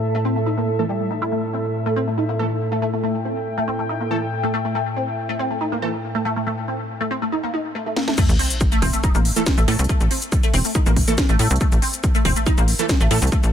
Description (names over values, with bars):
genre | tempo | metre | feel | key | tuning
driving peak-time techno | 140 BPM | 4/4 | straight | A minor | A4 = 445 Hz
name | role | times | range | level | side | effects
analog drone | drone | 0.0-6.5 s | A2 | -26 LUFS | equal | chorus, sidechain pumping
warbly tape-like pad | texture | 0.0-6.5 s | A4 to A5 | -27 LUFS | equal | chorus, built-in reverb, sidechain pumping
resonant blip pluck | riff | 0.1-13.4 s | G3 to E4 | -24 LUFS | equal | phaser, ensemble chorus, sidechain pumping, ping-pong delay
rave stab | stabs | 0.8-5.9, 9.4-13.2 s | E3 to A4 | -26 LUFS | right 3 dB | chorus, built-in reverb, sidechain pumping, ping-pong delay
techno drum kit | drums | 8.0-13.5 s | crash cymbal, hi-hat, shaker, snare drum | -24 LUFS | left 1 dB | overdrive, small room ambience
electronic kick drum | drums | 8.2-13.4 s | none | -18 LUFS | equal | overdrive, small room ambience
sub drop | sound effects | 8.2-9.9 s | none | -26 LUFS | equal | none
tight sequencer bass | bass | 8.3-13.5 s | E1 to A2 | -19 LUFS | equal | tube saturation, sidechain pumping
room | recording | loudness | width
light reverb, digital ambience | none | -18 LUFS | side -9 dB against mid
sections
0.0-8.2 A section; 8.2-13.5 B section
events
filter sweep on synth arpeggio sound 0.0-8.2; filter sweep on synth stab 0.0-8.2; drum fill 8.0; drop 8.2-13.5; impact 8.2-9.9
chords
0.0 A5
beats
0.04 0.47 0.89 | 1.32 1.75 2.18 2.61 | 3.04 3.46 3.89 4.32 | 4.75 5.18 5.61 6.04 | 6.46 6.89 7.32 7.75 | 8.18 8.61 9.04 9.46 | 9.89 10.32 10.75 11.18 | 11.61 12.04 12.46 12.89 | 13.32